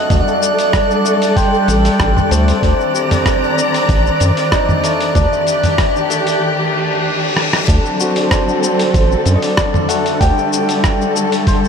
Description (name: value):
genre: organic downtempo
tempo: 95 BPM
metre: 4/4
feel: straight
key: D phrygian dominant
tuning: A4 = 440 Hz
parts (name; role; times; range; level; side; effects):
- breathy flute-like synth lead; melody; 0.0-11.1 s; C5 to G5; -19 LUFS; equal; wide subtle chorus, analog delay
- dark chamber string section; sustained chords; 0.0-11.7 s; D3 to Bb5; -18 LUFS; left 1 dB; sidechain pumping
- santur; arpeggios; 0.0-11.7 s; A3 to D5; -21 LUFS; left 2 dB; analog delay
- drifting glass-harmonics texture; texture; 0.0-6.4 s; F#6; -27 LUFS; right 4 dB; chorus, built-in reverb
- round analog bass; bass; 0.1-10.3 s; A1 to F#2; -14 LUFS; equal; tube saturation
- dusty soul sampler-style drum kit; drums; 0.1-11.7 s; cabasa, hi-hat, rim click, toms; -20 LUFS; equal; none
- electronic kick drum; drums; 0.1-11.6 s; none; -17 LUFS; equal; none
- reverse cymbal; sound effects; 6.7-7.7 s; none; -25 LUFS; left 4 dB; none
room: wet huge ambient reverb, RT60 7.1 s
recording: dreamy mix soaked in reverb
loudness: -12 LUFS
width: side -6 dB against mid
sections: 0.0-7.7 A section; 7.7-11.7 B section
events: filter sweep on santur 0.0-7.7; reverse cymbal 6.7-7.7; drum fill 7.4-7.7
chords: 0.1 Gsus2/D; 2.6 Cm9/D; 5.2 Ebmaj7/D; 7.7 D7; 10.2 Gsus2/D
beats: | 0.10 0.73 1.36 2.00 | 2.63 3.26 3.89 4.52 | 5.15 5.79 6.42 7.05 | 7.68 8.31 8.94 9.57 | 10.21 10.84 11.47